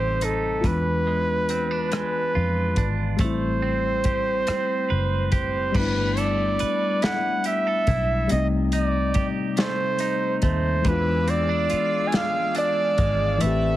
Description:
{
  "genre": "slow six-eight R&B",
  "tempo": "47 BPM (dotted quarters)",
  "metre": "6/8",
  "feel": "straight",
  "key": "unclear",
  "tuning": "A4 = 439 Hz",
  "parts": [
    { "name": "warm flugelhorn", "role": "melody", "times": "0.0-13.8 s", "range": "A4 to G#5", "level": "-25 LUFS", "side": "right 2 dB", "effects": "none" },
    { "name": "clean electric guitar", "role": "second line", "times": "0.0-13.8 s", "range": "C3 to B4", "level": "-31 LUFS", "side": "right 6 dB", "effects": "none" },
    { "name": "tine electric piano", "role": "accompaniment", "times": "0.0-13.8 s", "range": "E3 to D5", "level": "-27 LUFS", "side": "left 5 dB", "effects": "none" },
    { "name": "vintage muted fingered electric bass", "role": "bass", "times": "0.0-13.8 s", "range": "F#1 to F2", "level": "-26 LUFS", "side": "equal", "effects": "none" },
    { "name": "warm soul drum kit", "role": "drums", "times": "0.2-13.6 s", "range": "crash cymbal, hi-hat, kick drum, rim click, snare drum", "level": "-27 LUFS", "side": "equal", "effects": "none" },
    { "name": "chorused pulse-width pad", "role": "sustained chords", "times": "10.8-13.8 s", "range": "G4 to E6", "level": "-35 LUFS", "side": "left 1 dB", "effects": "none" }
  ],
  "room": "light reverb, studio reverb",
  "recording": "heavily compressed radio sound, multiband compression",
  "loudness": "-20 LUFS",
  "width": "side -14 dB against mid",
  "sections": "0.0-5.7 A section; 5.7-13.8 B section",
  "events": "none",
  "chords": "0.0 Cm6; 0.6 E7b9; 3.2 Am9; 5.7 G69; 8.3 Cm6; 10.9 E7b9",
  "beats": "| 0.64 1.92 | 3.19 4.47 | 5.75 7.02 | 8.30 9.58 | 10.85 12.13 | 13.40"
}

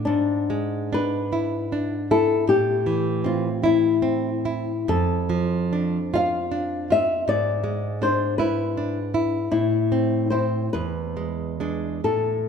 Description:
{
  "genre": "romantic duo for nylon-string guitar and classical guitar",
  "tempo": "45-54 BPM (dotted quarters)",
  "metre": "6/8",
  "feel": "rubato",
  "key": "unclear",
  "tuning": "A4 = 440 Hz",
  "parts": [
    { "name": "nylon-string guitar", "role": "accompaniment", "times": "0.0-12.5 s", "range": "E2 to F4", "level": "-24 LUFS", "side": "right 2 dB", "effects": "none" },
    { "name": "flamenco guitar", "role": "melody", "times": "0.1-12.5 s", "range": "D4 to F5", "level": "-23 LUFS", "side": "left 4 dB", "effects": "none" }
  ],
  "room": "moderate concert hall reverb, RT60 2.3 s",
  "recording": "minimal, uncompressed stereo recording",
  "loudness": "-21 LUFS",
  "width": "side -6 dB against mid",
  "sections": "0.0-12.5 A section",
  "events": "none",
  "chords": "0.1 E7/G#; 2.5 Am; 4.9 Dm/F; 7.3 E7/G#; 9.5 Am; 10.7 E7",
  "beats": "| 0.07 1.34 | 2.49 3.63 | 4.89 6.14 | 7.28 8.39 | 9.52 10.72 | 12.03"
}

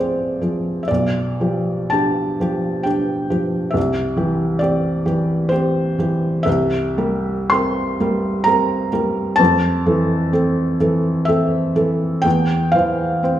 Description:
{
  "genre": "classical, romantic nocturne for solo piano",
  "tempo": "54-70 BPM",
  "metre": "3/4",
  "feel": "rubato",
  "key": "C major",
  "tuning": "A4 = 440 Hz",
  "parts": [
    { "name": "felt-muted upright piano", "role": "solo", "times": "0.0-13.4 s", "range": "B1 to C6", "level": "-16 LUFS", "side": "equal", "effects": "none" }
  ],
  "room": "wet recital hall reverb, RT60 1.4 s",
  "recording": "none",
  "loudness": "-16 LUFS",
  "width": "side -12 dB against mid",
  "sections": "0.0-13.4 A section",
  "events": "none",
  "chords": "0.0 Fm/C; 0.9 G7/B; 3.8 C; 6.5 C7; 9.4 Fmaj7; 12.3 C/E",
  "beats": "| 0.89 1.93 2.87 | 3.76 4.63 5.53 | 6.47 7.51 8.46 | 9.39 10.34 11.29 | 12.25 13.25"
}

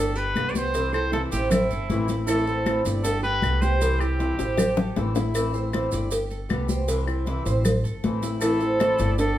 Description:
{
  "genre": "latin, Cuban son and guajira",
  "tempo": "156 BPM",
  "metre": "4/4",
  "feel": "straight",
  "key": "A minor",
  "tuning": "A4 = 440 Hz",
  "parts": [
    { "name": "clear trumpet", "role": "melody", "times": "0.0-5.2, 8.4-9.4 s", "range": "E4 to D5", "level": "-28 LUFS", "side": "equal", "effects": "none" },
    { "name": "nylon-string guitar", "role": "second line", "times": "0.0-5.2, 8.4-9.4 s", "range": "C4 to B4", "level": "-30 LUFS", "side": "right 3 dB", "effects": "none" },
    { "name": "fingerpicked acoustic archtop guitar", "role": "accompaniment", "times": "0.0-9.2 s", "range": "C3 to G4", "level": "-29 LUFS", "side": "left 3 dB", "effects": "none" },
    { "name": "Cuban tres", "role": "arpeggios", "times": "0.0-9.4 s", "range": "C4 to D5", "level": "-30 LUFS", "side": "right 2 dB", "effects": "none" },
    { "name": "upright bass", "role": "bass", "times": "0.0-9.4 s", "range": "G1 to C2", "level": "-27 LUFS", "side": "equal", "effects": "none" },
    { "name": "congas", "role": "percussion", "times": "0.2-9.4 s", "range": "none", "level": "-28 LUFS", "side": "left 2 dB", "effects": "none" },
    { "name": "maracas", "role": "percussion", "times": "0.2-9.4 s", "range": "none", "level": "-38 LUFS", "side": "right 5 dB", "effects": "none" },
    { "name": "claves", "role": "percussion", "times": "0.4-9.0 s", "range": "none", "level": "-38 LUFS", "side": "left 6 dB", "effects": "none" },
    { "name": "cowbell and bongos", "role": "percussion", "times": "0.4-9.4 s", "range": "none", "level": "-31 LUFS", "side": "left 1 dB", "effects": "none" }
  ],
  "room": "moderate large studio reverb, RT60 1.2 s",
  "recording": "minimal, uncompressed stereo recording",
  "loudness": "-21 LUFS",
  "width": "side -12 dB against mid",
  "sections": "0.0-9.4 A section",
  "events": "drum fill 4.4-5.3",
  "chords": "0.0 Gadd9; 0.8 C; 1.5 Am; 3.0 Gadd9; 3.8 C; 4.6 Am; 6.1 Gadd9; 6.9 C; 7.7 Am",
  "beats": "0.37 | 0.75 1.13 1.52 1.90 | 2.28 2.67 3.05 3.43 | 3.82 4.20 4.58 4.97 | 5.35 5.73 6.12 6.50 | 6.88 7.27 7.65 8.04 | 8.42 8.80 9.19"
}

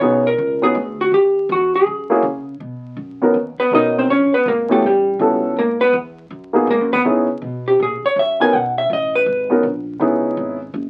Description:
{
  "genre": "jazz, small-group swing and bop",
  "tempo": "162 BPM",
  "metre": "4/4",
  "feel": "swing 63% on 8ths",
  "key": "B major",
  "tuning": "A4 = 442 Hz",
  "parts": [
    { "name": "vintage hollow-body jazz guitar", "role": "melody", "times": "0.0-9.6 s", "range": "G3 to G#5", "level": "-18 LUFS", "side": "equal", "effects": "none" },
    { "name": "warm baby grand piano", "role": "accompaniment", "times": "0.0-10.6 s", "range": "A#3 to A#4", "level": "-18 LUFS", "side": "equal", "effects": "none" },
    { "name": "upright bass", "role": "bass", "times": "0.0-10.9 s", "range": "F#1 to C#3", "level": "-32 LUFS", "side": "equal", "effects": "none" }
  ],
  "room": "moderate studio reverb, RT60 0.5 s",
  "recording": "very old 78 rpm record, vinyl crackle",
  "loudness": "-17 LUFS",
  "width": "mono",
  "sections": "0.0-2.6 A section; 2.6-10.9 B section",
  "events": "hollow-body jazz guitar solo 2.6-10.9",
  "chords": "0.0 Emaj13 (rootless); 1.1 D#; 1.9 F#9; 2.6 Bmaj9; 4.1 A#m7b5; 4.8 A13; 5.6 G#m9; 7.1 C#m7; 7.8 F#; 8.5 B7; 9.3 G#m11; 10.0 C#m7",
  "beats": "0.02 0.39 0.76 | 1.13 1.50 1.87 2.24 | 2.61 2.98 3.35 3.72 | 4.09 4.46 4.83 5.20 | 5.57 5.94 6.31 6.68 | 7.05 7.42 7.79 8.16 | 8.53 8.90 9.27 9.64 | 10.01 10.38 10.74"
}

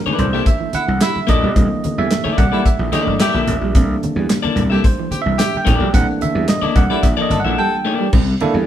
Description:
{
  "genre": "funk",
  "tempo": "110 BPM",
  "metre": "4/4",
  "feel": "straight",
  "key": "C mixolydian",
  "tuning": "A4 = 440 Hz",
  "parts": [
    { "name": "bell-like tine electric piano", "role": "stabs", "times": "0.0-8.6 s", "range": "C3 to G5", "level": "-20 LUFS", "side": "right 3 dB", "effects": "none" },
    { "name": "electric guitar at the edge of break-up", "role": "accompaniment", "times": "0.1-8.1 s", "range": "Bb3 to E5", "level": "-21 LUFS", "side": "left 7 dB", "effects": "none" },
    { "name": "congas", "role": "percussion", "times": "0.1-8.5 s", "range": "none", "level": "-26 LUFS", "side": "right 1 dB", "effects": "none" },
    { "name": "electric guitar at the edge of break-up", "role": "riff", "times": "0.2-8.6 s", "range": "E3 to C4", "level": "-26 LUFS", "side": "right 5 dB", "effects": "spring reverb" },
    { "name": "gritty slap bass", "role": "bass", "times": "0.2-8.6 s", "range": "G1 to E2", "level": "-21 LUFS", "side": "equal", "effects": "overdrive" },
    { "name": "damped 70s drum kit", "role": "drums", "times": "0.2-8.5 s", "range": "crash cymbal, handclaps, hi-hat, kick drum, ride cymbal, snare drum", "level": "-17 LUFS", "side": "equal", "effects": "none" },
    { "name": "clear baritone saxophone", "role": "second line", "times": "0.3-7.8 s", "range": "E4 to A4", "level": "-25 LUFS", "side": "left 2 dB", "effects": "none" }
  ],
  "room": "moderate stone room reverb, RT60 1.0 s",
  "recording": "band playing live in one room",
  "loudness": "-14 LUFS",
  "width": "side -11 dB against mid",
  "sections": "0.0-8.1 A section",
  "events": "tine electric piano solo 0.0-8.1",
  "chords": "0.0 C13",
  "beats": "0.47 1.02 | 1.56 2.11 2.66 3.21 | 3.75 4.30 4.85 5.39 | 5.94 6.49 7.04 7.59 | 8.13"
}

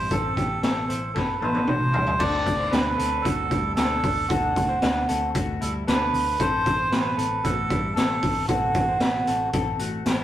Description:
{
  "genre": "jangly indie pop",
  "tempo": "115 BPM",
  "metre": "4/4",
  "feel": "straight",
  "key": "D mixolydian",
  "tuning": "A4 = 440 Hz",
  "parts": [
    { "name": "melodica", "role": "melody", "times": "0.0-9.5 s", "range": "F#4 to D5", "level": "-25 LUFS", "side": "right 3 dB", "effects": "none" },
    { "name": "clean electric guitar", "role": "arpeggios", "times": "0.0-10.2 s", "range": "G3 to C5", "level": "-29 LUFS", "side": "left 6 dB", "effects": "analog delay" },
    { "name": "vintage muted picked electric bass", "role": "bass", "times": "0.0-10.2 s", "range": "A1 to D2", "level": "-32 LUFS", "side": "equal", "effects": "tube saturation" },
    { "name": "raw garage drum kit", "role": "drums", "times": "0.1-10.2 s", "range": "crash cymbal, hi-hat, kick drum, snare drum, toms", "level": "-25 LUFS", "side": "equal", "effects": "none" }
  ],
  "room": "moderate stone room reverb, RT60 1.3 s",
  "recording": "rough rehearsal-room recording",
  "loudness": "-21 LUFS",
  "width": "side -12 dB against mid",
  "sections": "0.0-2.2 A section; 2.2-10.2 B section",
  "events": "drum fill 1.2-2.2",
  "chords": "0.0 Am; 2.2 Dadd9; 6.4 Am",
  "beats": "| 0.11 0.64 1.16 1.68 | 2.21 2.73 3.26 3.78 | 4.30 4.83 5.35 5.87 | 6.40 6.92 7.45 7.97 | 8.49 9.02 9.54 10.06"
}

